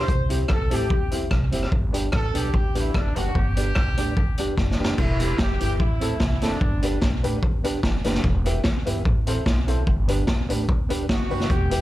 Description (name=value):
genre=ska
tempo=147 BPM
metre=4/4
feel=swing 54% on 8ths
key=G major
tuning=A4 = 439 Hz
part: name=warm horn section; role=melody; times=0.0-7.0, 11.1-11.8 s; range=D4 to C5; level=-30 LUFS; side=equal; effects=slapback echo, plate reverb
part: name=hollow-body jazz guitar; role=accompaniment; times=0.0-11.8 s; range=B3 to A4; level=-32 LUFS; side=right 6 dB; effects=plate reverb
part: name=upright bass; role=bass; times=0.0-11.8 s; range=E1 to C2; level=-26 LUFS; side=equal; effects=none
part: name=raw garage drum kit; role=drums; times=0.1-11.8 s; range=crash cymbal, hi-hat, kick drum, rim click, snare drum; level=-23 LUFS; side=equal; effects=none
part: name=warm upright piano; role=stabs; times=0.3-11.8 s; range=G3 to C5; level=-32 LUFS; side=left 5 dB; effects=slapback echo, plate reverb
room=light reverb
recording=none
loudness=-20 LUFS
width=side -15 dB against mid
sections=0.0-5.0 A section; 5.0-11.8 B section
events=drum fill 4.6-5.0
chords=0.1 C; 1.7 G; 5.0 Em; 5.8 Am; 6.6 G; 8.2 Em; 9.1 Am; 9.9 G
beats=| 0.08 0.49 0.90 1.31 | 1.72 2.12 2.53 2.94 | 3.35 3.76 4.17 4.58 | 4.98 5.39 5.80 6.21 | 6.61 7.02 7.43 7.84 | 8.24 8.65 9.06 9.46 | 9.87 10.28 10.69 11.09 | 11.50